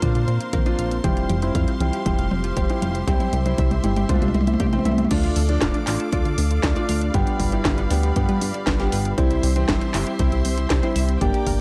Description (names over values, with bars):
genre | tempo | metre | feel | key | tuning
italo disco | 118 BPM | 4/4 | straight | unclear | A4 = 440 Hz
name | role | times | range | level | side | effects
warm concert grand piano | melody | 0.0-11.5 s | E3 to G4 | -31 LUFS | equal | analog delay
rich studio string section | sustained chords | 0.0-11.6 s | G4 to D6 | -34 LUFS | equal | none
analog pluck | arpeggios | 0.0-11.6 s | B3 to F5 | -37 LUFS | equal | none
bell-like tine electric piano | stabs | 0.0-11.6 s | G3 to E5 | -31 LUFS | equal | low-pass filter
chorused synth bass | bass | 0.0-11.6 s | D1 to Bb2 | -25 LUFS | equal | none
electronic kick drum | drums | 0.0-11.6 s | none | -26 LUFS | equal | overdrive
house drum kit | drums | 0.0-11.6 s | crash cymbal, handclaps, hi-hat, snare drum, toms | -28 LUFS | equal | overdrive
room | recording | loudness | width
digital ambience | dry, gritty hardware recording | -21 LUFS | mono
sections
0.0-5.1 A section; 5.1-11.6 B section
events
drum fill 0.0-5.1; filter sweep on tine electric piano 0.0-5.1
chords
0.0 Bbsus2; 1.0 Fsus2; 3.1 C; 5.1 Dm; 7.1 G7; 9.2 C